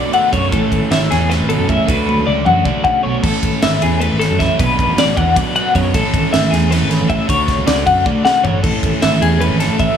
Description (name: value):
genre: math rock and midwest emo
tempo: 311 BPM (eighths)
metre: 7/8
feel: straight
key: A major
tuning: A4 = 439 Hz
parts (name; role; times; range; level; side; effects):
- twelve-string electric guitar; accompaniment; 0.0-3.2 s; A2 to A4; -21 LUFS; right 10 dB; none
- twelve-string electric guitar; arpeggios; 0.0-10.0 s; G#4 to F#5; -17 LUFS; left 4 dB; tremolo
- crunchy overdriven guitar; riff; 0.0-10.0 s; A2 to F#4; -19 LUFS; right 3 dB; none
- crisp fusion drum kit; drums; 0.1-9.9 s; crash cymbal, kick drum, ride cymbal, snare drum, toms; -20 LUFS; equal; none
- fingered electric bass; bass; 0.3-9.9 s; G#1 to F#2; -18 LUFS; equal; none
room: light reverb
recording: small room ambience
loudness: -12 LUFS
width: side -8 dB against mid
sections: 0.0-3.2 A section; 3.2-10.0 B section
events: drum fill 2.1-3.2, 8.1-8.6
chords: 0.0 Bm7; 0.5 Amaj7; 1.9 Dmaj7; 3.2 Amaj7; 4.6 Bm7; 5.9 Amaj7; 7.3 Dmaj7; 8.6 Amaj7